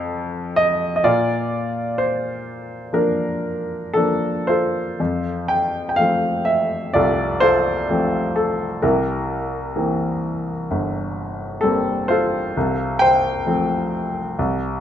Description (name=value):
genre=classical, lyrical solo piano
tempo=56-66 BPM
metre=4/4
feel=rubato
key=Bb major, F major from 5.0 s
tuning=A4 = 440 Hz
part: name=clear grand piano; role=solo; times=0.0-14.8 s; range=G1 to G5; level=-18 LUFS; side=equal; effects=none
room=moderate recital hall reverb, RT60 1.6 s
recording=minimal, uncompressed stereo recording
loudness=-18 LUFS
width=side -10 dB against mid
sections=0.0-5.0 A section; 5.0-14.8 B section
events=none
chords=0.0 F; 1.0 Bb; 5.0 F; 8.8 C7; 12.6 F/C